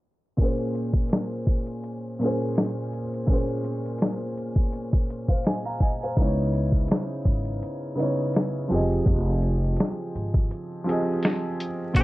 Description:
lo-fi hip hop; 83 BPM; 4/4; swing 56% on 16ths; Bb minor; A4 = 440 Hz
felt-muted upright piano; accompaniment; 0.4-12.0 s; Bb2 to Bb5; -27 LUFS; equal; low-pass filter, plate reverb
lo-fi sampler-style drum kit; drums; 0.4-12.0 s; hi-hat, kick drum, snare drum; -23 LUFS; equal
upright bass; bass; 6.2-12.0 s; F1 to Db2; -26 LUFS; equal
semi-hollow electric guitar; melody; 12.0 s; Ab4; -25 LUFS; equal; low-pass filter
moderate studio reverb, RT60 0.6 s; vinyl crackle, low-pass filter; -23 LUFS; side -18 dB against mid
0.4-11.9 A section
filter sweep 0.4-11.9; break 10.5-11.9
0.4 Bbm7; 6.2 Dbm7; 8.7 Fm7

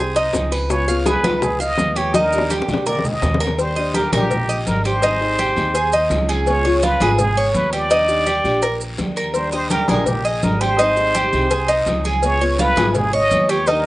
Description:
latin, Cuban son and guajira; 166 BPM; 4/4; straight; Eb major; A4 = 439 Hz
trumpet with plunger mute; melody; 0.0-13.9 s; G4 to Eb5; -21 LUFS; equal
Cuban tres; arpeggios; 0.0-13.9 s; Eb4 to F5; -20 LUFS; right 1 dB
upright bass; bass; 0.0-13.9 s; Ab1 to Eb2; -23 LUFS; equal
bongos and cowbell; percussion; 0.2-13.9 s; -25 LUFS; left 4 dB; slapback echo
congas; percussion; 0.2-13.9 s; -26 LUFS; left 1 dB
maracas; percussion; 0.2-13.9 s; -33 LUFS; right 4 dB
picked steel-string acoustic guitar; accompaniment; 0.3-13.9 s; Db3 to Ab4; -25 LUFS; left 3 dB
guiro; percussion; 0.3-13.9 s; -34 LUFS; left 2 dB
little or no reverb; recorded outdoors, with no room sound, nothing above 10.3 kHz; -15 LUFS; side -17 dB against mid
0.0-3.6 A section; 3.6-13.9 A section
drum fill 2.1-3.6
0.0 Ab; 0.7 Db7; 2.1 Ebmaj7; 5.0 Abmaj7; 6.5 Db7; 7.9 Ebmaj7; 10.8 Abmaj7; 12.2 Db7

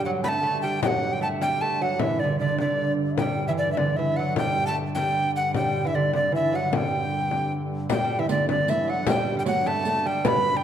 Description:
medieval dance; 102 BPM (dotted quarters); 6/8; straight; G major; A4 = 438 Hz
breathy bright alto recorder; melody; 0.0-10.6 s; D5 to B5; -26 LUFS; equal
lute; second line; 0.0-10.6 s; D3 to B3; -28 LUFS; right 4 dB
mellow bansuri; second line; 0.0-10.6 s; D5 to B5; -33 LUFS; left 2 dB
pipe organ, strings celeste; drone; 0.0-10.6 s; G2 to D3; -30 LUFS; equal
frame drum; percussion; 0.2-10.4 s; -30 LUFS; left 4 dB
riq; percussion; 7.9-10.4 s; -32 LUFS; right 4 dB
wet recital hall reverb, RT60 1.5 s; dark, warm production; -22 LUFS; side -9 dB against mid
0.0-7.9 A section; 7.9-10.6 A section

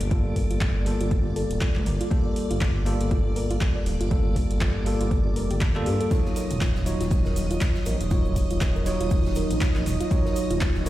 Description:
deep house; 120 BPM; 4/4; swing 58% on 16ths; G minor; A4 = 440 Hz
bell-like tine electric piano; stabs; 0.0-10.9 s; Gb3 to Db5; -29 LUFS; equal; fast stereo tremolo, sidechain pumping, digital delay
smooth gliding synth bass; bass; 0.0-10.9 s; D1 to G2; -27 LUFS; equal; sidechain pumping
deep house drum kit; drums; 0.0-10.9 s; handclaps, hi-hat; -35 LUFS; equal; studio reverb
string machine, violins; texture; 0.0-10.9 s; D5 to Eb6; -40 LUFS; right 1 dB; ensemble chorus, sidechain pumping
soft round pluck; arpeggios; 0.1-10.9 s; F4 to D5; -35 LUFS; equal; chorus, sidechain pumping, digital delay
electronic kick drum; drums; 0.1-10.7 s; -24 LUFS; equal; studio reverb
huge arena drum kit; drums; 6.1-10.9 s; hi-hat, snare drum; -43 LUFS; right 1 dB; sidechain pumping on hats, high-pass filter on hats, studio reverb, high-pass filter on snare, high-pass filter on room
cabasa; percussion; 6.1-10.9 s; -46 LUFS; right 2 dB
deep dark ambient pad; texture; 7.3-10.9 s; Eb4 to Db5; -36 LUFS; right 6 dB; chorus, built-in reverb, sidechain pumping
studio reverb; played on a big sound system in a bare room, stone room reverb; -22 LUFS; side -15 dB against mid
0.0-10.9 A section
0.0 Gm9; 6.1 Ebm9

